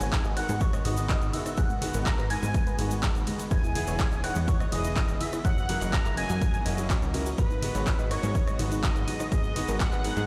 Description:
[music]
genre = progressive house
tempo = 124 BPM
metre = 4/4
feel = straight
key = G# minor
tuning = A4 = 440 Hz
[part]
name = expressive synth lead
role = melody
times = 0.0-10.3 s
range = B4 to A#5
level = -38 LUFS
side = equal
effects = ensemble chorus, delay
[part]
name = soft synth bell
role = second line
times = 0.0-10.3 s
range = B5 to A#6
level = -42 LUFS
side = equal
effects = chorus, phaser, sidechain pumping, digital delay
[part]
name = supersaw pad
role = sustained chords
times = 0.0-10.3 s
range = C#3 to G#4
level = -42 LUFS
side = equal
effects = none
[part]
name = soft round pluck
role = arpeggios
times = 0.0-10.2 s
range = G#3 to G#5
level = -41 LUFS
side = equal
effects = chorus, sidechain pumping, digital delay
[part]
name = warm grand piano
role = stabs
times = 0.0-10.2 s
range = G#2 to D#5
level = -39 LUFS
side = equal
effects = sidechain pumping, digital delay
[part]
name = plucky analog bass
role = bass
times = 0.0-10.3 s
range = E1 to G#2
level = -34 LUFS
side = equal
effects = sidechain pumping
[part]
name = house drum kit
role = drums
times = 0.0-10.3 s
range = handclaps, hi-hat, ride cymbal, rim click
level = -38 LUFS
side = equal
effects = overdrive, sidechain pumping on hats, sidechain pumping on cymbals
[part]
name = tube shaker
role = percussion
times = 0.0-10.3 s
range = none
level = -47 LUFS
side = equal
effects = none
[part]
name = twinkling granular texture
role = texture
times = 1.4-10.3 s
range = D#4 to D#5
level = -50 LUFS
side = equal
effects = none
[part]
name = electronic kick drum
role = drums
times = 0.1-9.9 s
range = none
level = -30 LUFS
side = equal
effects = none
[part]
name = bongos and congas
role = percussion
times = 0.2-10.3 s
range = none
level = -42 LUFS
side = equal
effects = none
[sound]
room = light reverb, digital ambience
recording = played on a big sound system in a bare room, stone room reverb, faint mains hum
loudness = -27 LUFS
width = mono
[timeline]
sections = 0.0-10.3 A section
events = none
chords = 0.0 G#m7; 3.5 Emaj7; 5.4 F#7; 7.4 G#m7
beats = 0.12 0.61 1.09 | 1.58 2.06 2.54 3.03 | 3.51 4.00 4.48 4.96 | 5.45 5.93 6.42 6.90 | 7.38 7.87 8.35 8.83 | 9.32 9.80

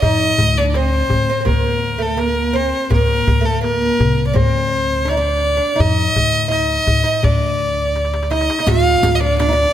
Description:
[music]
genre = Arabic maqam ensemble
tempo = 83 BPM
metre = 4/4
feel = straight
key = D maqam huzam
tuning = A4 = 435 Hz
[part]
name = clear violin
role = melody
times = 0.0-9.7 s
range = A4+42c to F5+50c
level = -18 LUFS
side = equal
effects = tape echo
[part]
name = oud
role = second line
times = 0.0-9.7 s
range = A3+40c to F#4-50c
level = -21 LUFS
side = right 3 dB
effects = none
[part]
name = upright bass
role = bass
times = 0.0-9.6 s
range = C2+50c to F#2-50c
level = -20 LUFS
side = equal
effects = none
[part]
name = darbuka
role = percussion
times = 0.0-9.6 s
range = none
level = -20 LUFS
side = left 3 dB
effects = none
[part]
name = riq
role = percussion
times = 8.7-9.6 s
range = none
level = -28 LUFS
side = left 2 dB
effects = none
[sound]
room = moderate concert hall reverb, RT60 2.2 s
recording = close, detailed microphones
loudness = -14 LUFS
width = side -11 dB against mid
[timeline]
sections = 0.0-8.7 A section; 8.7-9.7 B section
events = drum fill 7.9-8.7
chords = none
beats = | 0.03 0.75 1.47 2.19 | 2.91 3.62 4.34 5.06 | 5.78 6.50 7.22 7.94 | 8.66 9.38

